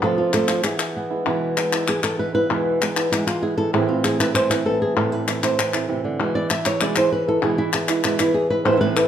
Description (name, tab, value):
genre	flamenco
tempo	194 BPM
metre	4/4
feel	straight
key	unclear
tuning	A4 = 440 Hz
part	flamenco guitar	melody	0.0-9.1 s	A2 to E5	-20 LUFS	equal	none
part	flamenco guitar	stabs	0.0-9.1 s	E2 to F4	-25 LUFS	right 6 dB	none
part	palmas hand claps	percussion	0.0-9.1 s	none	-24 LUFS	left 5 dB	none
room	wet large studio reverb, RT60 1.1 s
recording	none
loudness	-18 LUFS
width	side -9 dB against mid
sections	0.0-1.3 A section; 1.3-9.1 B section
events	nylon-string guitar solo 1.3-9.1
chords	0.0 F; 0.6 E; 3.7 Am; 6.2 E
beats	| 0.03 0.34 0.65 0.95 | 1.26 1.57 1.88 2.19 | 2.50 2.81 3.12 3.43 | 3.74 4.05 4.36 4.66 | 4.97 5.28 5.59 5.90 | 6.20 6.51 6.82 7.13 | 7.43 7.74 8.05 8.35 | 8.66 8.97